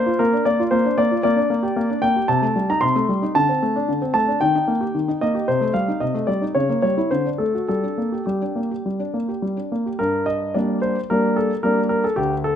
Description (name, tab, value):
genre	classical-period piano sonatina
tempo	101-116 BPM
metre	4/4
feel	rubato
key	G minor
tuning	A4 = 436 Hz
part	warm concert grand piano	solo	0.0-12.6 s	D2 to C6	-18 LUFS	equal	none
room	moderate large studio reverb, RT60 1.3 s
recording	none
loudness	-18 LUFS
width	side -9 dB against mid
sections	0.0-10.0 A section; 10.0-12.6 B section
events	none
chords	0.0 Bb; 1.2 Gm/Bb; 2.3 Am7b5/C; 3.3 D5; 4.4 Eb; 5.5 Am7b5/C; 6.6 C#dim7; 7.1 D7; 7.7 Gm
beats	0.20 0.72 | 1.24 1.76 2.29 2.82 | 3.35 3.88 4.41 4.95 | 5.48 6.01 6.55 7.11 | 7.68 8.27 8.85 9.42 | 9.99 10.55 11.10 11.64 | 12.18